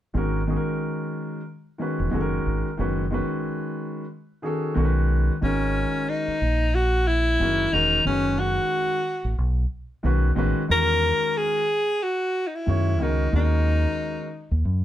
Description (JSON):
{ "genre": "hip hop, jazz-hop", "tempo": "91 BPM", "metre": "4/4", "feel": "swing 59% on 16ths", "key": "G# minor", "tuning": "A4 = 440 Hz", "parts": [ { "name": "dark baby grand piano", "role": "accompaniment", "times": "0.1-14.3 s", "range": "C#3 to C#5", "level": "-26 LUFS", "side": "equal", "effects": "none" }, { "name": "deep dub fingered electric bass", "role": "bass", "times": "0.1-14.8 s", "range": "E1 to F#2", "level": "-23 LUFS", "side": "equal", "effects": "none" }, { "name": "breathy alto saxophone", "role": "melody", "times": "5.4-14.6 s", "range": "C#4 to A#4", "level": "-23 LUFS", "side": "left 1 dB", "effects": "none" } ], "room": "moderate studio reverb, RT60 0.7 s", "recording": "band playing live in one room", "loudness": "-21 LUFS", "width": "side -12 dB against mid", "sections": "0.1-5.4 A section; 5.4-14.8 B section", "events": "none", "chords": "0.1 G#m11; 2.1 F#add9; 2.8 B9/F#; 4.8 Badd9; 5.4 G#9sus4; 7.4 F#9; 8.1 Badd9/F#; 10.0 B9; 10.7 E69; 13.3 D#m7" }